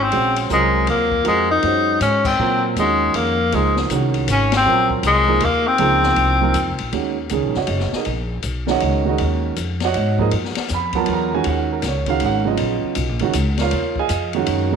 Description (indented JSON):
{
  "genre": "modal jazz",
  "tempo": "159 BPM",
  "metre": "3/4",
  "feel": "swing 64% on 8ths",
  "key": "Bb minor, Eb minor from 6.9 s",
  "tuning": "A4 = 441 Hz",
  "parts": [
    { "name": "clear tenor saxophone", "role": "melody", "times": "0.0-6.8 s", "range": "Ab3 to Eb4", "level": "-16 LUFS", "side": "left 2 dB", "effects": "slapback echo" },
    { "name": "upright bass", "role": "bass", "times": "0.0-14.8 s", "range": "Gb1 to Bb2", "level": "-22 LUFS", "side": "left 1 dB", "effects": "none" },
    { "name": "warm grand piano", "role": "accompaniment", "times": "0.1-14.8 s", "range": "Db3 to Cb6", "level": "-21 LUFS", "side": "right 8 dB", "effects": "none" },
    { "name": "open jazz drum kit", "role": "drums", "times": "0.1-14.6 s", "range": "crash cymbal, hi-hat, kick drum, ride cymbal, snare drum", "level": "-28 LUFS", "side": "left 8 dB", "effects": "none" }
  ],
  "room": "moderate echo chamber reverb, RT60 1.5 s, small room ambience",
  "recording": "1960s-style stereo with parts hard left and right",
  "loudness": "-16 LUFS",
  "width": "side -6 dB against mid",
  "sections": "0.0-6.9 A section; 6.9-14.8 B section",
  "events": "band accent 2.2, 4.5",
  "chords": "0.0 Bbm9; 6.9 Ebm11"
}